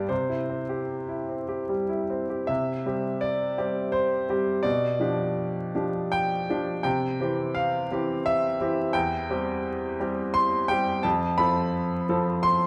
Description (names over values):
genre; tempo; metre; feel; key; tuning
classical, romantic character piece for solo piano; 74-88 BPM; 3/4; rubato; C major; A4 = 440 Hz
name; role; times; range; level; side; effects
bright baby grand piano; solo; 0.0-12.7 s; E2 to C6; -26 LUFS; equal; none
room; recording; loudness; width
wet recital hall reverb, RT60 1.5 s; vinyl crackle; -27 LUFS; mono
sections
0.0-2.5 A section; 2.5-12.7 B section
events
none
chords
0.1 C; 4.6 G7/B; 6.9 C; 8.9 C/E; 11.0 F